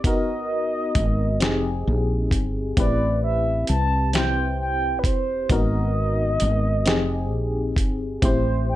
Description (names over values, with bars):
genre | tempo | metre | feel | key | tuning
slow six-eight R&B | 44 BPM (dotted quarters) | 6/8 | straight | unclear | A4 = 442 Hz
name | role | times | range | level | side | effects
FM electric piano with tremolo | accompaniment | 0.0-8.8 s | B3 to C5 | -26 LUFS | left 2 dB | none
woody fretless electric bass | bass | 0.0-8.8 s | F1 to C2 | -23 LUFS | equal | none
dusty soul sampler-style drum kit | drums | 0.0-8.4 s | hi-hat, kick drum, snare drum | -23 LUFS | equal | none
mellow horn-like synth lead | melody | 0.1-8.8 s | B4 to A5 | -26 LUFS | right 1 dB | chorus, slapback echo
room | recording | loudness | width
light reverb | dark, warm production | -20 LUFS | side -14 dB against mid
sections
0.0-8.8 A section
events
none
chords
0.0 G#m9; 1.4 Fm9; 2.8 Am9; 5.5 G#m9; 6.9 Fm9; 8.2 Am7